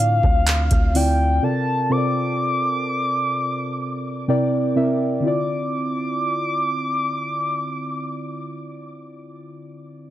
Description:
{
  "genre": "contemporary R&B",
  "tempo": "63 BPM",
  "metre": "4/4",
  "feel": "straight",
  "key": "D minor",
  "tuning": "A4 = 439 Hz",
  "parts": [
    { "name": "mellow horn-like synth lead", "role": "melody", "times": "0.0-9.4 s", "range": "F5 to D6", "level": "-24 LUFS", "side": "equal", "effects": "chorus, tape echo" },
    { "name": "muted felt-like synth keys", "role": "accompaniment", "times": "0.0-10.1 s", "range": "C3 to G5", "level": "-24 LUFS", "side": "equal", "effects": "chorus" },
    { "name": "long sustained 808-style bass", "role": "bass", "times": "0.0-1.4 s", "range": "D2 to A2", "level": "-19 LUFS", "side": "equal", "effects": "none" },
    { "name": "booming analog drum machine", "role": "drums", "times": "0.0-1.2 s", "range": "handclaps, hi-hat, kick drum", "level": "-20 LUFS", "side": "equal", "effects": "overdrive" }
  ],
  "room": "light reverb",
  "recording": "none",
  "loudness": "-19 LUFS",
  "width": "side -13 dB against mid",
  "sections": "0.0-5.2 A section; 5.2-9.0 B section",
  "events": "synth keys fill 3.8-5.2",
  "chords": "0.0 Dm9; 1.4 C13sus4; 4.3 C9; 5.2 Dm9",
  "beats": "0.47 | 1.43 2.38 3.33 4.28 | 5.24 6.19 7.14 8.09"
}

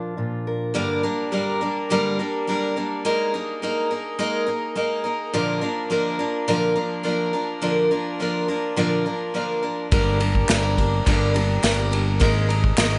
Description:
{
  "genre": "indie folk with a building arrangement",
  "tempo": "105 BPM",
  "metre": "4/4",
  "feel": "straight",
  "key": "unclear",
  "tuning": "A4 = 440 Hz",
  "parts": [
    { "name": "fingerpicked steel-string acoustic guitar", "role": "accompaniment", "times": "0.0-0.8 s", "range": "Bb2 to Bb4", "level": "-32 LUFS", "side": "equal", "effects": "tape echo" },
    { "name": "picked steel-string acoustic guitar", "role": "accompaniment", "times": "0.7-13.0 s", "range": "G2 to Bb4", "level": "-25 LUFS", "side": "equal", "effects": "tape echo" },
    { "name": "hand-pumped harmonium", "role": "sustained chords", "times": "0.8-13.0 s", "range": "F4 to C6", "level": "-31 LUFS", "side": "equal", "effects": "none" },
    { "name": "fingered electric bass", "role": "bass", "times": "9.9-13.0 s", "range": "G1 to Ab1", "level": "-25 LUFS", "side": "equal", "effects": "none" },
    { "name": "unplugged drum kit", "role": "drums", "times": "9.9-12.9 s", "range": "kick drum, ride cymbal, snare drum", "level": "-24 LUFS", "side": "equal", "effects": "tape echo" },
    { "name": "group handclap", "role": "percussion", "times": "10.5-12.9 s", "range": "none", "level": "-34 LUFS", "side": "equal", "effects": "none" }
  ],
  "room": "light reverb",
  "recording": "echo-heavy mix, nothing above 10.5 kHz",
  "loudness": "-23 LUFS",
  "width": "mono",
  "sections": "0.8-13.0 A section",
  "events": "none",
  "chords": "0.0 Bb; 0.8 Gm; 3.0 Absus2; 5.3 Bb; 9.9 Gm; 12.2 Absus2",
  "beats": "0.18 | 0.75 1.33 1.90 2.47 | 3.04 3.62 4.19 4.76 | 5.33 5.91 6.48 7.05 | 7.63 8.20 8.77 9.34 | 9.91 10.49 11.06 11.63 | 12.20 12.77"
}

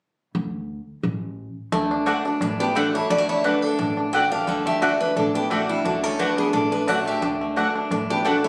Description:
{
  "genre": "bluegrass",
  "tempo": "174 BPM",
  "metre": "4/4",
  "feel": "swing 54% on 8ths",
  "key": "D major",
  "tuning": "A4 = 439 Hz",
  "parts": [
    { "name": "upright bass", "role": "bass", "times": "0.3-8.3 s", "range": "A1 to D2", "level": "-33 LUFS", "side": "equal", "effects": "none" },
    { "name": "bluegrass banjo", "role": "melody", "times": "1.7-8.5 s", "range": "D3 to D4", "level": "-29 LUFS", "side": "equal", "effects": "plate reverb" },
    { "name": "picked steel-string acoustic guitar", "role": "accompaniment", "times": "1.7-8.5 s", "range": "A2 to F#4", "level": "-29 LUFS", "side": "equal", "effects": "none" },
    { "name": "mandolin", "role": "stabs", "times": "2.1-8.4 s", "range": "A3 to F#5", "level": "-27 LUFS", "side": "equal", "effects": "none" },
    { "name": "picked steel-string acoustic guitar", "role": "melody", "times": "2.6-8.5 s", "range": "E4 to G5", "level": "-27 LUFS", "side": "equal", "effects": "plate reverb" },
    { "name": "clear fiddle", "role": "second line", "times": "2.6-8.5 s", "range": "G3 to D5", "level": "-30 LUFS", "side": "equal", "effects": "none" }
  ],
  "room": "moderate studio ambience, RT60 0.5 s",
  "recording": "recorded on a phone in the room, club reverb, compression",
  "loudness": "-23 LUFS",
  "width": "mono",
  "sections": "0.4-1.7 A section; 1.7-8.5 B section",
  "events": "none",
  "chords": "0.4 D5; 1.7 D",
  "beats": "| 0.35 0.69 1.04 1.38 | 1.73 2.07 2.41 2.76 | 3.10 3.44 3.79 4.13 | 4.48 4.82 5.16 5.51 | 5.85 6.20 6.54 6.88 | 7.23 7.57 7.92 8.26"
}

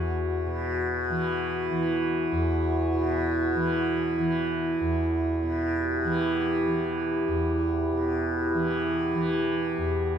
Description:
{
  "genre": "world meditative, free-time meditation music",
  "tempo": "free time",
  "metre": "none",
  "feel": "none",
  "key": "E minor",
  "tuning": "A4 = 440 Hz",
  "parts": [
    { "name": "tanpura", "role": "drone", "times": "0.0-10.2 s", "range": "E2 to E3", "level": "-28 LUFS", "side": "equal", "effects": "stereo widening" },
    { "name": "glass harmonica", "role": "texture", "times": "0.0-10.2 s", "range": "E4 to G4", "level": "-27 LUFS", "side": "equal", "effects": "none" }
  ],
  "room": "wet cathedral reverb, RT60 6.1 s",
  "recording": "dark, warm production",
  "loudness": "-24 LUFS",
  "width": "side -8 dB against mid",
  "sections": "0.0-10.2 A section",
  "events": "none",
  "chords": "none",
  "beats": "free time"
}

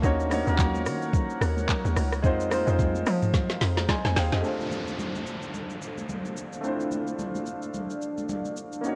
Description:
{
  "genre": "amapiano",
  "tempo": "109 BPM",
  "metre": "4/4",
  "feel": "swing 58% on 16ths",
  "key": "unclear",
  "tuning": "A4 = 442 Hz",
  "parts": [
    { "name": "warm concert grand piano", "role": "accompaniment", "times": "0.0-9.0 s", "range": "Ab3 to C6", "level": "-32 LUFS", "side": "equal", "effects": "none" },
    { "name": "deep dark ambient pad", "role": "sustained chords", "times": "0.0-9.0 s", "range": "D4 to Gb5", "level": "-38 LUFS", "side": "equal", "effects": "chorus, built-in reverb" },
    { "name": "hollow log drum bass", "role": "bass", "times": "0.0-4.4 s", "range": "Db2 to F3", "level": "-30 LUFS", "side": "equal", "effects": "none" },
    { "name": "smooth R&B drum kit", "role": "drums", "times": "0.0-9.0 s", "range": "handclaps, hi-hat, kick drum, rim click, shaker, snare drum, toms", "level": "-30 LUFS", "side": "equal", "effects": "none" },
    { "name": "congas", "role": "percussion", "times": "0.3-8.6 s", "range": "none", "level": "-39 LUFS", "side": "equal", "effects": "none" },
    { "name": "downlifter", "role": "sound effects", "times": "4.4-8.8 s", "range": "none", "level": "-41 LUFS", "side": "equal", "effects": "none" }
  ],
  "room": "little or no reverb",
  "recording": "worn, warbling old tape, cassette tape, warbly pitch drift",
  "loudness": "-27 LUFS",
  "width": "mono",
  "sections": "0.0-4.4 A section; 4.4-9.0 B section",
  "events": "drop 0.0-4.4; drum fill 3.3-4.4; grand piano fill 3.6-4.4",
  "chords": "0.0 Ebm7; 2.2 Fm7; 4.4 Dm7",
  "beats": "| 0.04 0.59 1.14 1.69 | 2.24 2.79 3.34 3.89 | 4.44 4.99 5.54 6.09 | 6.64 7.19 7.74 8.29 | 8.84"
}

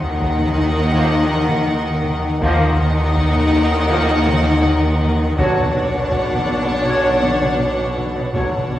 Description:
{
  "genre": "cinematic, suspense film score",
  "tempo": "81 BPM",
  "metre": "4/4",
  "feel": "straight",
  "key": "unclear",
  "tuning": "A4 = 440 Hz",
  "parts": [
    { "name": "warm studio violin section", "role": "melody", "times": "0.0-8.8 s", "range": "Gb5", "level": "-26 LUFS", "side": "left 2 dB", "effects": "none" },
    { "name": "rich chamber violin section", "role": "second line", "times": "0.0-8.8 s", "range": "Bb4 to C#5", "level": "-25 LUFS", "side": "left 1 dB", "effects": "none" },
    { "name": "rich chamber viola section", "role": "accompaniment", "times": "0.0-8.8 s", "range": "D4 to Eb4", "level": "-23 LUFS", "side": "left 1 dB", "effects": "none" },
    { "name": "round analog bass", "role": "riff", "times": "0.0-8.8 s", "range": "B2 to Eb4", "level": "-25 LUFS", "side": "left 1 dB", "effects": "none" },
    { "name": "rich chamber double bass section", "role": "bass", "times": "0.0-8.8 s", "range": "B1 to Eb2", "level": "-21 LUFS", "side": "equal", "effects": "none" },
    { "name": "warm chamber cello section", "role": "bass", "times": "0.0-8.8 s", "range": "B2 to Eb3", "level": "-23 LUFS", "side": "equal", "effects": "none" },
    { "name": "overtone-sweeping drone", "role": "drone", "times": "0.1-8.8 s", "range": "B1 to Eb2", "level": "-28 LUFS", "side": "equal", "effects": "none" },
    { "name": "taiko ensemble", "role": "drums", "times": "0.2-8.8 s", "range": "none", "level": "-27 LUFS", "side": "equal", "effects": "none" },
    { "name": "warm French horn section", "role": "sustained chords", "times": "0.9-8.6 s", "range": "F3 to C#5", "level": "-25 LUFS", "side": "left 1 dB", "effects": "none" },
    { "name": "warm trombone section", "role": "sustained chords", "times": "0.9-8.6 s", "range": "D3 to F#3", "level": "-28 LUFS", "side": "right 1 dB", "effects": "none" }
  ],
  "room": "wet concert hall reverb, RT60 2.0 s",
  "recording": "heard from further back in the room, small room ambience",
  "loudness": "-15 LUFS",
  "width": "side -13 dB against mid",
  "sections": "0.0-8.8 A section",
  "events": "none",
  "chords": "0.0 Ebmadd9; 5.4 Bmadd9",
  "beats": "0.20 0.94 1.68 | 2.42 3.16 3.90 4.64 | 5.38 6.12 6.87 7.61 | 8.35"
}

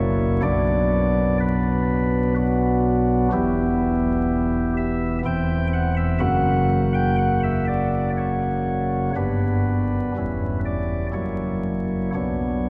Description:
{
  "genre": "classical, chorale-style piece for pipe organ",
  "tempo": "62 BPM",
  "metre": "3/4",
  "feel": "straight",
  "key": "B minor",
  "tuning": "A4 = 440 Hz",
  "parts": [
    { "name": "chamber organ, flutes", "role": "solo", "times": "0.0-12.7 s", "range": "E1 to G5", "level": "-22 LUFS", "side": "equal", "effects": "none" }
  ],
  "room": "wet cathedral reverb, RT60 5.3 s",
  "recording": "heard from further back in the room, vinyl crackle",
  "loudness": "-22 LUFS",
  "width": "mono",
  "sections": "0.0-12.7 A section",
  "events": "none",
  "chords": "0.4 Bm; 3.3 Em; 5.3 C/E; 6.2 F#; 9.2 G; 10.1 C#m7b5/E; 11.1 F#7; 12.1 Bm",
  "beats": "| 0.44 1.41 2.37 | 3.33 4.29 5.26 | 6.23 7.21 8.18 | 9.16 10.14 11.12 | 12.13"
}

